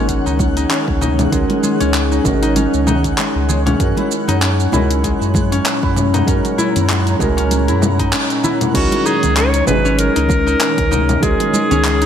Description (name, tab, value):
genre	organic downtempo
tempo	97 BPM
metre	4/4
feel	swing 56% on 16ths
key	C# dorian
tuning	A4 = 444 Hz
part	felt-muted upright piano	accompaniment	0.0-12.1 s	D#3 to A#4	-23 LUFS	right 4 dB	sidechain pumping, digital delay
part	ethereal airy pad	sustained chords	0.0-12.1 s	A#2 to A#5	-23 LUFS	equal	ensemble chorus, built-in reverb, sidechain pumping
part	concert harp	arpeggios	0.0-12.1 s	G#3 to G#4	-19 LUFS	left 3 dB	digital delay
part	warm sub bass	bass	0.0-12.1 s	G#1 to F#2	-18 LUFS	equal	sidechain pumping
part	twinkling granular texture	texture	0.0-8.8 s	F#5	-32 LUFS	right 1 dB	built-in reverb
part	deep house drum kit	drums	0.1-12.1 s	congas, crash cymbal, handclaps, hi-hat, shaker	-21 LUFS	left 1 dB	none
part	electronic kick drum	drums	0.1-11.4 s	none	-21 LUFS	equal	none
part	congas	percussion	0.4-11.8 s	none	-25 LUFS	right 1 dB	none
part	clear clarinet	melody	8.7-12.1 s	F#4 to C#5	-17 LUFS	equal	tape echo
room	light reverb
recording	none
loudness	-13 LUFS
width	side -9 dB against mid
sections	0.0-8.7 A section; 8.7-12.1 B section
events	band accent 8.1-8.4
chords	0.0 C#sus2; 3.8 F#; 8.7 C#sus2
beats	0.09 0.71 | 1.32 1.94 2.56 3.18 | 3.80 4.42 5.04 5.66 | 6.27 6.89 7.51 8.13 | 8.75 9.37 9.98 10.60 | 11.22 11.84